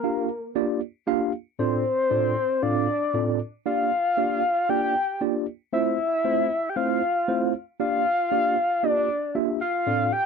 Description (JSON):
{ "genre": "pop", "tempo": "116 BPM", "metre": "4/4", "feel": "straight", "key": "unclear", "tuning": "A4 = 439 Hz", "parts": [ { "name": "soft octave-layered synth lead", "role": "melody", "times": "0.0-10.3 s", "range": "Bb4 to G5", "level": "-23 LUFS", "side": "left 2 dB", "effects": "chorus, slapback echo" }, { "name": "mellow tine electric piano", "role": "accompaniment", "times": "0.0-10.1 s", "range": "A2 to F5", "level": "-25 LUFS", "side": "right 3 dB", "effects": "medium stereo tremolo" } ], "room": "little or no reverb", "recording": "dry, close 1970s-style studio recording", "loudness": "-22 LUFS", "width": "side -5 dB against mid", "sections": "0.0-10.3 A section", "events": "none", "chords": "0.0 Gm7; 1.6 Dm7/A; 3.7 Bb6; 5.7 Fmaj7; 7.8 Gm7", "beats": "0.04 0.56 1.07 | 1.59 2.11 2.62 3.14 | 3.66 4.18 4.69 5.21 | 5.73 6.25 6.76 7.28 | 7.80 8.31 8.83 9.35 | 9.87" }